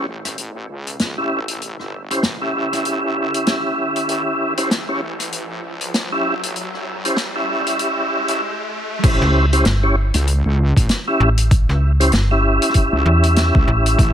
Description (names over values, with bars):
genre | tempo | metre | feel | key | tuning
glitch hop | 97 BPM | 4/4 | swing 59% on 16ths | unclear | A4 = 440 Hz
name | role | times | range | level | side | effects
tonewheel organ | stabs | 0.0-14.1 s | C#4 to E5 | -20 LUFS | equal | chorus vibrato, stopped rotary speaker, sidechain pumping, low-pass filter, digital delay
wobble bass | bass | 0.0-14.1 s | G1 to C#2 | -24 LUFS | equal | chorus, high-pass filter
riser | sound effects | 0.8-9.0 s | none | -31 LUFS | equal | none
vintage drum kit | drums | 0.2-14.1 s | crash cymbal, hi-hat, rim click, snare drum | -22 LUFS | left 1 dB | none
electronic kick drum | drums | 9.0-14.1 s | none | -15 LUFS | equal | overdrive
slap-like FM bass | bass | 9.2-14.0 s | G1 to E2 | -15 LUFS | equal | tube saturation
room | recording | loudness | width
light reverb, small room ambience | high-pass filter | -16 LUFS | side -10 dB against mid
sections
0.0-9.0 A section; 9.0-14.1 B section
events
build-up 0.0-9.0; riser 0.8-9.0; stop 8.4-9.0; drop 9.0-14.1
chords
0.0 A7; 9.0 A7#9